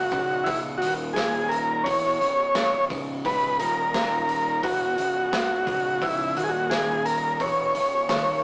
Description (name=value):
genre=psychedelic rock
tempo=86 BPM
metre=4/4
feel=straight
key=C# dorian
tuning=A4 = 440 Hz
part: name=combo organ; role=melody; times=0.0-8.4 s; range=E4 to C#5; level=-23 LUFS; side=equal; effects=none
part: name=twelve-string electric guitar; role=riff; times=0.0-8.4 s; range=C#2 to E3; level=-34 LUFS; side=equal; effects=phaser
part: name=fuzz picked electric bass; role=bass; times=0.0-8.4 s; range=C#1 to E1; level=-34 LUFS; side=equal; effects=overdrive
part: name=crunchy breakbeat drum kit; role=drums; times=0.1-8.3 s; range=hi-hat, kick drum, snare drum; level=-30 LUFS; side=equal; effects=none
room=moderate stone room reverb, RT60 1.1 s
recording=rough rehearsal-room recording, tube saturation, small speaker sound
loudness=-22 LUFS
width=side -29 dB against mid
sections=0.0-8.4 A section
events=none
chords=0.0 C#5; 0.8 D#5; 1.9 C#m; 3.6 D#5; 4.6 C#m; 6.4 D#5; 7.4 C#m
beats=| 0.47 1.16 1.85 2.55 | 3.24 3.94 4.63 5.33 | 6.02 6.71 7.41 8.10